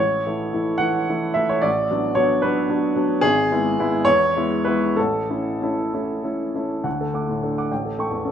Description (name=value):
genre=classical, romantic character piece for solo piano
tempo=63-77 BPM (dotted quarters)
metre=6/8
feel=rubato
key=A major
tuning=A4 = 442 Hz
part: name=clear upright piano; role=solo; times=0.0-8.3 s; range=G#1 to D6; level=-19 LUFS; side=equal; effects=none
room=wet large studio reverb, RT60 1.3 s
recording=none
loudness=-19 LUFS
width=side -9 dB against mid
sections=0.0-6.9 A section; 6.9-8.3 B section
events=none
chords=0.0 A; 1.7 Bm7/A; 3.2 E/G#; 4.1 E; 5.0 A; 6.9 D; 7.7 A7